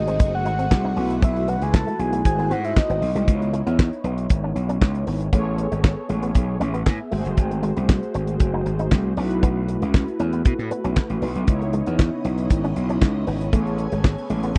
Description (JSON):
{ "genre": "early-eighties boogie funk", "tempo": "117 BPM", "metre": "4/4", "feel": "straight", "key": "C# minor", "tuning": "A4 = 440 Hz", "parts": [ { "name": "soft octave-layered synth lead", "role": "melody", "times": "0.0-3.3 s", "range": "D#5 to A5", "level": "-28 LUFS", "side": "equal", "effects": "chorus, tape echo" }, { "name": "mellow synth brass", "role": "accompaniment", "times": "0.0-14.6 s", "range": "A3 to G#5", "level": "-31 LUFS", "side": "equal", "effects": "chorus, phaser" }, { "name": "phased string machine", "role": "sustained chords", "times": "0.0-3.3, 11.5-14.6 s", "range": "B#2 to G#5", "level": "-38 LUFS", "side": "equal", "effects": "ensemble chorus, phaser" }, { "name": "gritty slap bass", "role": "bass", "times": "0.0-14.6 s", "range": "F#1 to B2", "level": "-26 LUFS", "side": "equal", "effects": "overdrive, tube saturation" }, { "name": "electric guitar with an envelope filter", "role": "riff", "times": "0.1-14.6 s", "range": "G#3 to D#4", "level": "-32 LUFS", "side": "equal", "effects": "ensemble chorus" }, { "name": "damped 70s drum kit", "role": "drums", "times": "0.1-14.6 s", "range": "handclaps, hi-hat, kick drum, snare drum", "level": "-20 LUFS", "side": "equal", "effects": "none" } ], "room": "little or no reverb", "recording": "dry, close 1970s-style studio recording", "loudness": "-22 LUFS", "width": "mono", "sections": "0.0-3.3 A section; 3.3-14.6 B section", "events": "soft synth lead solo 0.0-3.3", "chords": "0.0 G#7b9; 1.0 B7sus4; 2.2 G#7b9b13; 3.3 C#m9; 5.3 Amaj9; 7.1 G#7b9; 9.2 B7sus4; 11.5 C#m9; 13.5 Amaj9", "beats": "0.20 0.71 | 1.22 1.74 2.25 2.76 | 3.27 3.79 4.30 4.81 | 5.33 5.84 6.35 6.86 | 7.38 7.89 8.40 8.92 | 9.43 9.94 10.45 10.97 | 11.48 11.99 12.51 13.02 | 13.53 14.04 14.56" }